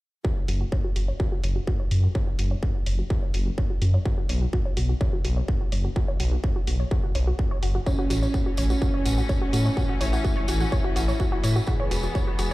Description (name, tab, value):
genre	melodic techno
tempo	126 BPM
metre	4/4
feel	straight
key	F# minor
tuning	A4 = 440 Hz
part	wide unison pluck	arpeggios	0.2-12.5 s	F#4 to C#5	-34 LUFS	equal	sidechain pumping, dub echo
part	electronic kick drum	drums	0.2-12.2 s	none	-26 LUFS	equal	distortion
part	dark detuned saw bass	bass	0.5-12.5 s	E1 to A2	-23 LUFS	equal	sidechain pumping
part	electronic hi-hat	drums	0.5-12.5 s	none	-37 LUFS	equal	sidechain pumping on hats
part	expressive synth lead	melody	7.9-12.5 s	C#4 to G#4	-30 LUFS	right 1 dB	chorus, sidechain pumping, tape echo
part	clear symphonic string section	sustained chords	7.9-12.5 s	E3 to C#4	-34 LUFS	left 2 dB	sidechain pumping
part	tambourine	percussion	7.9-12.5 s	none	-37 LUFS	right 1 dB	none
room	digital ambience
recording	played on a big sound system in a bare room, large studio reverb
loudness	-22 LUFS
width	side -18 dB against mid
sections	0.2-12.5 A section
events	filter sweep on synth arpeggio sound 0.2-12.5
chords	0.2 F#5; 4.1 B5; 7.9 A; 11.7 E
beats	| 0.25 0.72 1.20 1.67 | 2.15 2.63 3.10 3.58 | 4.05 4.53 5.01 5.48 | 5.96 6.44 6.91 7.39 | 7.87 8.34 8.82 9.29 | 9.77 10.25 10.72 11.20 | 11.67 12.15